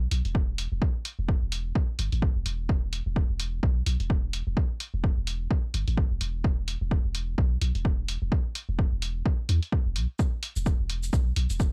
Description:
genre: minimal techno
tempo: 128 BPM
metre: 4/4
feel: swing 58% on 16ths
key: E minor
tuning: A4 = 438 Hz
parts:
  - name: punchy sub bass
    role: bass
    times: 0.0-11.7 s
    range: E1 to E2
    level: -31 LUFS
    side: equal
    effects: tube saturation, sidechain pumping
  - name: electronic hi-hat and cabasa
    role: drums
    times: 0.1-11.7 s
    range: none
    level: -36 LUFS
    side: equal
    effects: none
  - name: electronic kick drum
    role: drums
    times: 0.3-11.7 s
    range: none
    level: -28 LUFS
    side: equal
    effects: none
room: little or no reverb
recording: dry, gritty hardware recording, cassette tape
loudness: -28 LUFS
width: mono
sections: 0.0-11.7 A section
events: none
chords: none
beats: 0.35 | 0.82 1.29 1.76 2.22 | 2.69 3.16 3.63 4.10 | 4.57 5.04 5.51 5.97 | 6.44 6.91 7.38 7.85 | 8.32 8.79 9.26 9.72 | 10.19 10.66 11.13 11.60

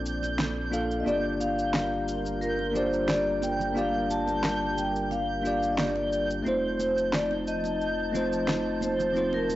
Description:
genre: sunset chillout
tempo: 89 BPM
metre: 4/4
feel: straight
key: unclear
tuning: A4 = 440 Hz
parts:
  - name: bell-like tine electric piano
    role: accompaniment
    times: 0.0-9.6 s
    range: F3 to F5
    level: -29 LUFS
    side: equal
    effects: auto-pan, low-pass filter, cassette tape
  - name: lush unison pad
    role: sustained chords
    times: 0.0-9.6 s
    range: F3 to A5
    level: -38 LUFS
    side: equal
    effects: chorus, cassette tape
  - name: round analog bass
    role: bass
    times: 0.0-9.6 s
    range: F1 to Bb1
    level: -38 LUFS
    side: equal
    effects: none
  - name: twinkling granular texture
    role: texture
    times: 0.0-9.6 s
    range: G6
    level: -37 LUFS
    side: right 3 dB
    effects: built-in reverb, cassette tape
  - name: electronic cabasa and snare drum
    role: drums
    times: 0.1-9.6 s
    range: none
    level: -32 LUFS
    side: equal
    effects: overdrive, cassette tape
  - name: congas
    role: percussion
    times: 0.2-9.6 s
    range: none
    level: -40 LUFS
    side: right 7 dB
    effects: none
  - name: vibraphone with medium mallets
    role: melody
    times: 1.0-9.6 s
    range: Bb4 to A5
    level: -29 LUFS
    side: left 1 dB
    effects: cassette tape
room: moderate spring reverb, RT60 1.7 s, digital ambience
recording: home recording on cassette, nothing above 7.8 kHz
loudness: -25 LUFS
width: side -15 dB against mid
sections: 0.0-9.6 A section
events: none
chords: 0.0 Bbmaj7; 1.1 Gm7; 6.5 F7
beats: 0.39 | 1.06 1.73 2.41 3.08 | 3.76 4.43 5.10 5.78 | 6.45 7.13 7.80 8.47 | 9.15

